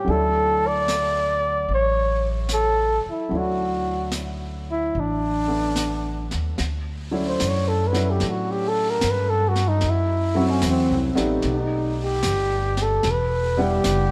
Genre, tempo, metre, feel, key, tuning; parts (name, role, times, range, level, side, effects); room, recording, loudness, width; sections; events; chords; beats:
jazz ballad; 74 BPM; 4/4; swing 68% on 8ths; D major; A4 = 440 Hz
warm flugelhorn; melody; 0.0-14.1 s; C4 to D5; -25 LUFS; equal
warm concert grand piano; accompaniment; 0.0-14.1 s; F#3 to F#5; -29 LUFS; equal
upright bass; bass; 0.0-14.1 s; E1 to A2; -28 LUFS; equal
vintage brush drum kit; drums; 0.1-14.1 s; brushed snare drum, hi-hat, snare drum; -34 LUFS; equal
moderate echo chamber reverb, RT60 2.8 s; heard from further back in the room; -22 LUFS; mono
0.0-6.6 A section; 6.6-14.1 B section
flugelhorn solo 6.6-14.1
0.1 Dmaj9; 9.8 F#m7b5; 11.4 B7alt; 13.0 Em7
| 0.07 0.88 1.68 2.49 | 3.30 4.11 4.93 5.76 | 6.58 7.40 8.21 9.02 | 9.82 10.63 11.43 12.23 | 13.04 13.84